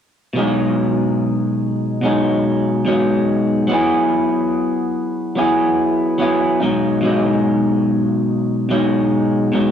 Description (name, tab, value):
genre	indie pop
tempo	72 BPM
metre	4/4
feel	swing 55% on 16ths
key	B major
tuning	A4 = 440 Hz
part	electric guitar through a small old amp	solo	0.3-9.7 s	B2 to G#4	-15 LUFS	equal	wide subtle chorus, warbly pitch drift, cassette tape
room	moderate booth ambience, RT60 0.2 s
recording	home recording on cassette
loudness	-15 LUFS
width	side -8 dB against mid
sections	0.4-7.0 A section; 7.0-9.7 B section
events	none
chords	0.4 B6; 3.7 F#9sus4; 6.6 B6